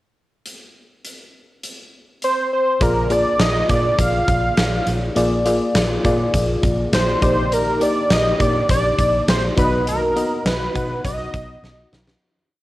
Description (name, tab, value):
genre	1980s-style pop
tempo	102 BPM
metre	4/4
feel	straight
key	unclear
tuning	A4 = 440 Hz
part	huge arena drum kit	drums	0.5-12.2 s	hi-hat, kick drum, snare drum	-22 LUFS	equal	none
part	wide unison lead	melody	2.2-11.9 s	Bb4 to F5	-20 LUFS	equal	none
part	FM electric piano	accompaniment	2.8-12.2 s	Bb3 to F#5	-22 LUFS	left 1 dB	chorus, cassette tape
part	vintage muted fingered electric bass	bass	2.8-12.1 s	Bb1 to B2	-24 LUFS	equal	none
room	moderate spring reverb, RT60 2.3 s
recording	home recording on cassette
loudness	-16 LUFS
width	side -16 dB against mid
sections	0.5-2.8 pickup bar; 2.8-12.2 verse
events	fade-out 9.9-12.2; drum fill 11.6-12.2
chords	0.5 N.C.; 2.8 Bb7; 7.2 Ebmaj7/Bb; 9.6 B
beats	| 0.46 1.04 1.63 2.22 | 2.81 3.40 3.99 4.57 | 5.16 5.75 6.34 6.93 | 7.51 8.10 8.69 9.28 | 9.87 10.46 11.04 11.63